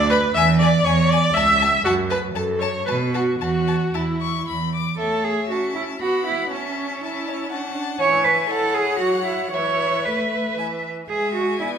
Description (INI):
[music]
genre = quick classical-period movement for string quartet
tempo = 110-123 BPM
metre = 3/4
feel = rubato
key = A major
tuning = A4 = 441 Hz
[part]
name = rich viola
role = accompaniment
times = 0.0-11.8 s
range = E3 to E5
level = -23 LUFS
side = right 1 dB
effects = none
[part]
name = rich cello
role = bass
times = 0.0-11.7 s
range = C#2 to C#5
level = -21 LUFS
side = right 3 dB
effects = none
[part]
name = clear violin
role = melody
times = 0.1-11.8 s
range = E5 to D6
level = -28 LUFS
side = left 9 dB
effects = none
[part]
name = rich violin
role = second line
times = 0.1-11.8 s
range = E4 to F#5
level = -29 LUFS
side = left 4 dB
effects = none
[sound]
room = wet recital hall reverb, RT60 1.4 s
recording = recorded in a church or concert hall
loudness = -18 LUFS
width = side -8 dB against mid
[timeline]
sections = 0.0-5.0 A section; 5.0-11.8 B section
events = none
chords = 0.3 E; 1.3 A/C#; 1.8 F#m; 2.9 B5; 3.4 A/E; 4.5 E5; 5.0 A; 6.5 A/C#; 7.5 Dmaj7/C#; 8.0 E; 9.0 F#5; 9.5 Esus4; 10.6 E5; 11.1 G#dim